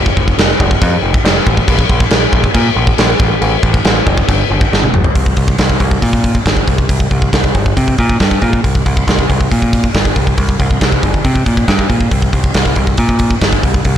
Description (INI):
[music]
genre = heavy metal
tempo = 138 BPM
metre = 4/4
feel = straight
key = unclear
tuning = A4 = 440 Hz
[part]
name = growling picked electric bass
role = bass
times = 0.0-14.0 s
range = F1 to C3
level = -14 LUFS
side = equal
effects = overdrive
[part]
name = big rock drum kit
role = drums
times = 0.1-14.0 s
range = crash cymbal, hi-hat, kick drum, snare drum, toms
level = -12 LUFS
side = equal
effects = none
[sound]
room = little or no reverb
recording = blown-out, overdriven recording, overdrive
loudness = -10 LUFS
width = side -10 dB against mid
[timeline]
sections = 0.0-5.2 A section; 5.2-14.0 B section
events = drum fill 4.7-5.2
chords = none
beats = 0.38 0.81 1.25 | 1.68 2.12 2.55 2.98 | 3.42 3.85 4.29 4.72 | 5.15 5.59 6.02 6.46 | 6.89 7.33 7.76 8.20 | 8.64 9.07 9.51 9.94 | 10.38 10.81 11.25 11.68 | 12.12 12.55 12.99 13.42 | 13.86